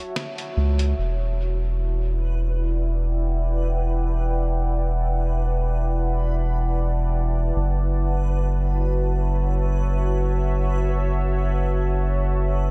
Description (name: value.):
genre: ambient dub.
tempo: free time.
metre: none.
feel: none.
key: E dorian.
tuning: A4 = 441 Hz.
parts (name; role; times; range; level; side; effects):
deep dark ambient pad; sustained chords; 0.0-12.7 s; E4 to A5; -32 LUFS; equal; chorus, built-in reverb.
lo-fi sampler-style drum kit; drums; 0.2-0.9 s; hi-hat, snare drum; -38 LUFS; equal; low-pass filter on hats, small room reverb, low-pass filter on snare, dub echo.
soft dub sub bass; bass; 0.6-12.7 s; E1 to C#2; -24 LUFS; equal; none.
backwards swelling texture; texture; 2.2-12.7 s; B4; -37 LUFS; equal; built-in reverb.
room: digital ambience.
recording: none.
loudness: -23 LUFS.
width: mono.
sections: 1.0-12.7 A section.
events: band accent 0.2-0.6.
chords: 0.0 F#m7; 1.0 Em11; 7.6 F#m7.